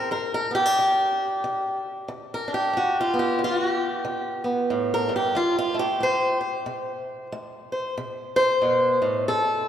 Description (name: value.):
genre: acoustic country blues, solo or duo.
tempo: 92 BPM.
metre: 4/4.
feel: swing 60% on 8ths.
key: unclear.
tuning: A4 = 436 Hz.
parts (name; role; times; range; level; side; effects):
fingerpicked swing-style acoustic guitar; solo; 0.0-9.7 s; G2 to C5; -22 LUFS; equal; none.
room: wet church reverb, RT60 2.9 s.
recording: recorded in a church or concert hall.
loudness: -21 LUFS.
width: side -10 dB against mid.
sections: 0.0-9.7 A section.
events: none.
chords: 0.1 G; 5.4 F; 8.0 Amadd9.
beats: | 0.12 0.77 1.43 2.08 | 2.74 3.39 4.05 4.70 | 5.36 6.01 6.67 7.32 | 7.97 8.63 9.28.